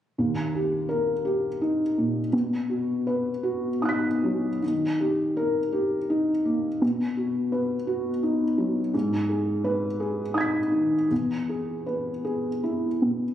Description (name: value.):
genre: neoclassical minimalist piano.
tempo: 48-57 BPM (dotted quarters).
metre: 6/8.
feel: rubato.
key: unclear.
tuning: A4 = 440 Hz.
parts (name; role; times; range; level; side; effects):
felt-muted upright piano; solo; 0.2-13.3 s; Eb2 to B6; -23 LUFS; equal; none.
room: light reverb.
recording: recorded on a phone in the room, club reverb, compression.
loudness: -23 LUFS.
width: side -11 dB against mid.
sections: 0.2-4.6 A section; 4.6-13.3 B section.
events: none.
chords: 0.2 Eb; 2.3 B; 4.6 Eb; 6.8 B; 8.9 Abm; 11.1 E.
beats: | 0.18 1.25 | 2.33 3.43 | 4.62 5.73 | 6.82 7.88 | 8.94 9.99 | 11.10 12.26.